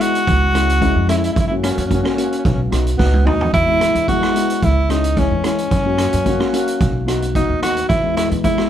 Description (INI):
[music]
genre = calypso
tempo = 110 BPM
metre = 4/4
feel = straight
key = E major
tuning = A4 = 441 Hz
[part]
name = clear tenor saxophone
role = melody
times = 0.0-8.7 s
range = B3 to F#4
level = -19 LUFS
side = right 1 dB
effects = none
[part]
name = steel pan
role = accompaniment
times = 0.0-8.7 s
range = G#3 to F#4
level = -20 LUFS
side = left 3 dB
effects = none
[part]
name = street-band drum kit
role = drums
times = 0.0-8.7 s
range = hi-hat, kick drum, rim click, snare drum, toms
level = -22 LUFS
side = right 2 dB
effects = none
[part]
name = upright bass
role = bass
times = 0.3-8.5 s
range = B1 to F#2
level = -19 LUFS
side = equal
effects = none
[sound]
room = moderate studio reverb, RT60 0.6 s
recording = heard from further back in the room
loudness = -14 LUFS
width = side -10 dB against mid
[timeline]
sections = 0.0-8.7 A section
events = drum fill 3.0-3.5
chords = 0.3 C#m; 1.4 F#; 2.4 B; 3.5 E; 4.6 C#m; 5.7 F#; 6.8 B; 7.9 E